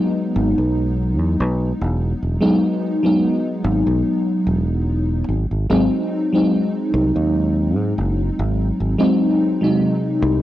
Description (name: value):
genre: vaporwave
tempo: 73 BPM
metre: 4/4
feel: swing 54% on 16ths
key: E major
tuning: A4 = 439 Hz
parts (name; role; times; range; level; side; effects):
- FM electric piano with soft pad layer; accompaniment; 0.0-10.4 s; B#2 to D#4; -18 LUFS; equal; tremolo, analog chorus, analog delay
- fingered electric bass; bass; 0.4-10.4 s; E1 to G#2; -20 LUFS; equal; none
room: light reverb, digital ambience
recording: dry, gritty hardware recording, cassette tape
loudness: -16 LUFS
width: side -14 dB against mid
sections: 0.0-10.4 A section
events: none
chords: 0.0 Emaj7; 5.3 G#7